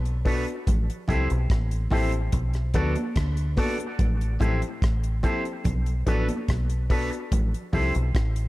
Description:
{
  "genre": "dub reggae",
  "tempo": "72 BPM",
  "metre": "4/4",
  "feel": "straight",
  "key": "A dorian",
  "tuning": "A4 = 440 Hz",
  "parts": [
    { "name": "deep dub fingered electric bass", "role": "bass", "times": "0.0-8.5 s", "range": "A1 to D2", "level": "-25 LUFS", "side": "equal", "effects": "none" },
    { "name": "damped 70s drum kit", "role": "drums", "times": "0.1-8.5 s", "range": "hi-hat, kick drum, rim click", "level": "-26 LUFS", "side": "equal", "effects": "none" },
    { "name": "clear upright piano", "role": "stabs", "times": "0.2-7.9 s", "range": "B3 to A4", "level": "-32 LUFS", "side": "left 3 dB", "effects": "dub echo" },
    { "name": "electric guitar with an envelope filter", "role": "accompaniment", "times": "0.3-7.9 s", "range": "D4 to D5", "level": "-34 LUFS", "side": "right 3 dB", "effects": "dub echo" },
    { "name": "congas", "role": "percussion", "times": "0.7-7.9 s", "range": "none", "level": "-35 LUFS", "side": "right 2 dB", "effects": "dub echo" },
    { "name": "clean electric guitar", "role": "arpeggios", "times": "4.4-4.6 s", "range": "A2", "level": "-39 LUFS", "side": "left 6 dB", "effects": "none" }
  ],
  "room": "studio ambience",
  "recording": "dark, warm production",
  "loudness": "-22 LUFS",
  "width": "side -18 dB against mid",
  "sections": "0.0-8.5 A section",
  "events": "break 0.0-4.0",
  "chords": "0.0 Bm7; 0.7 Am7; 2.3 Bm7; 4.0 Am7; 5.7 Bm7; 7.3 Am7",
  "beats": "| 0.67 1.50 2.33 3.16 | 3.99 4.82 5.66 6.49 | 7.32 8.15"
}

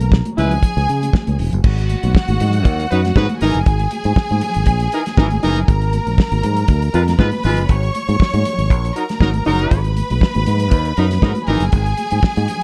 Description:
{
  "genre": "disco",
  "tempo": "119 BPM",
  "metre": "4/4",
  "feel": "straight",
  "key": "G# minor",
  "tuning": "A4 = 439 Hz",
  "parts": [
    { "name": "clear studio string section", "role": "second line", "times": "0.0-12.6 s", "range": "F#4 to C#6", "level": "-26 LUFS", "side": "equal", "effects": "none" },
    { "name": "fingered electric bass", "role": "bass", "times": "0.0-12.5 s", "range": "E1 to C#3", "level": "-20 LUFS", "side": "equal", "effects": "none" },
    { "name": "damped 70s drum kit", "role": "drums", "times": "0.0-12.6 s", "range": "crash cymbal, hi-hat, kick drum, snare drum", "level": "-18 LUFS", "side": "equal", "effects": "none" },
    { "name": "congas", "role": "percussion", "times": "0.0-12.6 s", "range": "none", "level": "-28 LUFS", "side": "equal", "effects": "none" },
    { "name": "clear horn section", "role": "stabs", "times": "0.4-11.6 s", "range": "E3 to B4", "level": "-22 LUFS", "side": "equal", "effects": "none" }
  ],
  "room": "small room ambience",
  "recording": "dark, warm production",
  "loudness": "-17 LUFS",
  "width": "mono",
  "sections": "0.0-1.6 A section; 1.6-12.6 B section",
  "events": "none",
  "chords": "0.4 C#m; 1.6 G#m7; 3.4 F#13; 5.7 A#7(no3)/G#; 7.7 D#m7/G#; 9.7 G#m7; 11.5 F#13 (rootless)",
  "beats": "0.12 0.63 1.14 | 1.64 2.15 2.65 3.16 | 3.66 4.17 4.67 5.17 | 5.68 6.18 6.69 7.19 | 7.70 8.20 8.70 9.21 | 9.71 10.21 10.72 11.22 | 11.73 12.23"
}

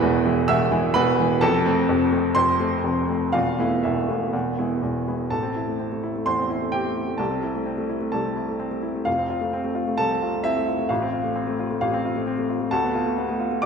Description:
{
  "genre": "classical, virtuoso piano study",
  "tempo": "120-133 BPM",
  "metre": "4/4",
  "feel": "rubato",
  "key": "A minor",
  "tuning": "A4 = 440 Hz",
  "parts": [
    { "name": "warm baby grand piano", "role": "solo", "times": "0.0-13.7 s", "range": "E1 to E6", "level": "-21 LUFS", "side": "equal", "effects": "none" }
  ],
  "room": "wet scoring stage reverb, RT60 1.6 s",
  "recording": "minimal, uncompressed stereo recording",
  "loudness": "-21 LUFS",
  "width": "side -6 dB against mid",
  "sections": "0.0-5.3 A section; 5.3-13.7 B section",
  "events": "none",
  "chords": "0.0 E; 1.4 F; 3.3 Esus4; 4.3 E; 5.3 Am; 7.2 Am/C; 9.1 F; 10.9 F/A; 12.7 Bm7b5/D",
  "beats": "0.03 0.49 0.96 | 1.43 1.90 2.37 2.85 | 3.34 3.84 4.34 4.82 | 5.31 5.79 6.26 6.73 | 7.20 7.67 8.13 8.60 | 9.06 9.53 9.99 10.44 | 10.90 11.35 11.81 12.26 | 12.71 13.16 13.62"
}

